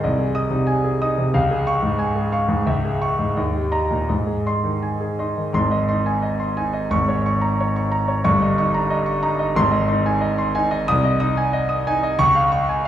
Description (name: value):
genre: classical, virtuoso piano study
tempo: 82-93 BPM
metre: 2/4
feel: rubato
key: Ab major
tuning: A4 = 440 Hz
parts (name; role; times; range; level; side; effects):
- clear grand piano; solo; 0.0-12.9 s; G1 to Eb6; -18 LUFS; equal; none
room: wet recital hall reverb, RT60 1.6 s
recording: heard from further back in the room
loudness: -18 LUFS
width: side -11 dB against mid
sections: 0.0-5.5 A section; 5.5-12.9 A section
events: none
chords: 0.0 Ab/C; 1.3 Db; 2.7 Dbm; 3.4 Eb; 4.1 Ab; 6.9 Bbm7/Ab; 8.2 Eb7/G; 9.6 Ab; 10.9 Ab/C; 12.2 Db